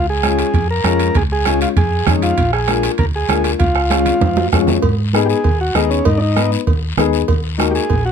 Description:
latin, cumbia; 196 BPM; 4/4; straight; A4 = 440 Hz
combo organ; melody; 0.0-8.1 s; Db4 to Bb4; -19 LUFS; right 1 dB
hollow-body short-scale fingered electric bass; bass; 0.0-8.1 s; Bb1 to Ab2; -19 LUFS; equal
dark upright piano; accompaniment; 0.2-7.8 s; Ab3 to Cb5; -18 LUFS; left 10 dB
bombo; percussion; 0.2-8.1 s; -19 LUFS; right 3 dB
congas; percussion; 0.2-8.1 s; -25 LUFS; right 5 dB
guiro; percussion; 0.2-8.1 s; -28 LUFS; left 8 dB
timbales and cowbell; percussion; 0.2-8.0 s; -25 LUFS; right 5 dB
little or no reverb; close, detailed microphones; -13 LUFS; side -7 dB against mid
0.0-4.8 A section; 4.8-8.1 B section
drum fill 4.2-4.8; transistor combo organ solo 4.8-8.1
0.0 Db; 2.4 Bb; 3.6 Db; 4.8 Abm; 7.3 Ebm

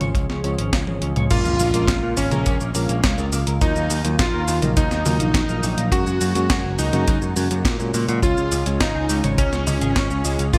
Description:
synthwave; 104 BPM; 4/4; straight; A4 = 439 Hz
chorused pulse-width pad; sustained chords; 0.0-10.6 s; Db3 to F5; -32 LUFS; equal; sidechain pumping
mellow electric guitar; riff; 0.0-10.6 s; Gb3 to Eb5; -36 LUFS; equal; lush chorus, delay
FM electric piano with soft pad layer; stabs; 0.0-10.6 s; Gb3 to Eb5; -32 LUFS; equal; chorus, digital delay
modern bright picked electric bass; bass; 0.0-10.6 s; Gb1 to Bb2; -25 LUFS; equal
clean 12-bit digital drum machine; drums; 0.0-10.6 s; cabasa, crash cymbal, hi-hat, snare drum, toms; -27 LUFS; equal
kick drum; drums; 0.1-10.6 s; -25 LUFS; equal
bright electric grand piano; melody; 1.3-10.6 s; Db4 to Gb4; -27 LUFS; equal; analog chorus, delay
string machine, violins; second line; 1.3-10.6 s; Db4 to Gb4; -35 LUFS; equal
impact; sound effects; 1.3-3.6 s; -33 LUFS; equal
moderate plate reverb, RT60 1.4 s; bright 1980s-style digital production; -20 LUFS; mono
0.0-1.3 A section; 1.3-10.6 B section
drum fill 0.7-1.3; impact 1.3-3.6
0.0 Db; 1.3 Bbm7; 3.6 Ebmadd9; 5.9 Gbadd9; 8.2 Db

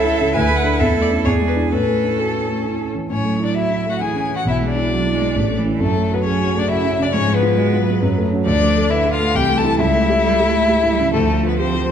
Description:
quick classical-period movement for piano quartet; 134 BPM; 3/4; straight; A major; A4 = 440 Hz
rich violin; melody; 0.0-11.9 s; A4 to A5; -22 LUFS; left 5 dB
clear cello; second line; 0.0-11.9 s; C#3 to B4; -23 LUFS; right 7 dB
warm violin; second line; 0.0-11.9 s; A3 to A4; -24 LUFS; left 3 dB
dark concert grand piano; accompaniment; 0.0-11.9 s; A1 to B4; -18 LUFS; equal
moderate scoring stage reverb, RT60 1.6 s; dark, warm production; -15 LUFS; side -8 dB against mid
0.0-3.1 A section; 3.1-11.9 A section
0.3 D; 0.8 A/E; 1.3 E7; 1.7 A; 4.5 E7/B; 5.4 A; 5.8 F#m; 7.1 G#m6; 8.0 F#m; 8.5 Dm; 9.4 Am/C; 9.8 A7/C#; 11.1 Dm

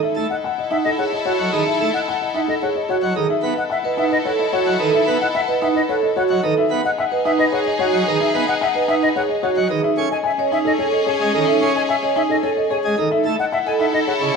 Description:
classical, minimalist pattern music; 110 BPM; 3/4; straight; E major; A4 = 440 Hz
dark baby grand piano; melody; 0.0-14.4 s; A4 to G#5; -22 LUFS; left 9 dB
rich studio violin section; sustained chords; 0.0-14.4 s; C#4 to A4; -25 LUFS; left 3 dB
vibraphone with soft mallets; arpeggios; 0.0-14.4 s; D#4 to C#5; -21 LUFS; right 8 dB
pipe organ, plenum; accompaniment; 0.2-14.3 s; C#3 to C#4; -24 LUFS; right 3 dB
concert flute; arpeggios; 0.3-14.4 s; D#5 to G#5; -23 LUFS; left 2 dB
moderate recital hall reverb, RT60 1.4 s; close, detailed microphones; -16 LUFS; side -5 dB against mid
0.0-14.4 A section
0.0 F#m9; 3.3 B9sus4; 6.6 Emaj9 (rootless); 9.8 Amaj7; 13.1 F#m9

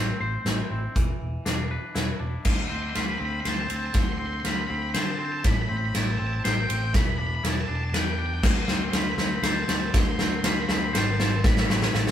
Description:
post-rock; 120 BPM; 3/4; straight; D dorian; A4 = 440 Hz
twangy electric guitar; arpeggios; 0.0-12.1 s; A2 to C5; -32 LUFS; left 1 dB
fingered electric bass; bass; 0.0-12.1 s; E1 to D3; -29 LUFS; equal
huge arena drum kit; drums; 0.5-12.1 s; crash cymbal, hi-hat, kick drum, ride cymbal, snare drum; -25 LUFS; equal
octave-fuzz lead guitar; melody; 2.5-12.1 s; G5 to C6; -32 LUFS; equal; distortion
moderate stone room reverb, RT60 0.9 s; band playing live in one room; -23 LUFS; side -10 dB against mid
0.0-2.5 A section; 2.5-12.1 B section
build-up 2.5-12.1; drum fill 2.5-12.1
0.0 Am; 1.0 E5; 2.5 Dm7; 5.4 Am7; 6.9 Em7; 8.4 Dm7; 11.4 Am

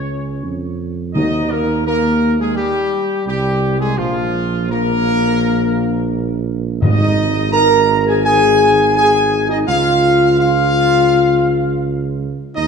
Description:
classical; 84 BPM; 4/4; straight; A4 = 441 Hz
clear trumpet section; melody; 0.0-12.7 s; F4 to Bb5; -17 LUFS; equal
mellow French horn section; sustained chords; 0.0-12.7 s; F3 to Bb4; -19 LUFS; left 5 dB
mellow trombone section; sustained chords; 0.0-12.7 s; F3 to Bb4; -21 LUFS; right 2 dB
mellow tuba; bass; 0.0-12.7 s; Ab1 to F2; -19 LUFS; right 5 dB
timpani; percussion; 1.2-2.2, 6.8-7.8 s; Ab2 to Eb3; -19 LUFS; equal
wet scoring stage reverb, RT60 2.0 s; dark, warm production; -13 LUFS; side -6 dB against mid
0.0-12.7 A section
0.0 Db; 1.2 Eb; 4.0 Bb5; 6.8 Ab5; 9.7 Db

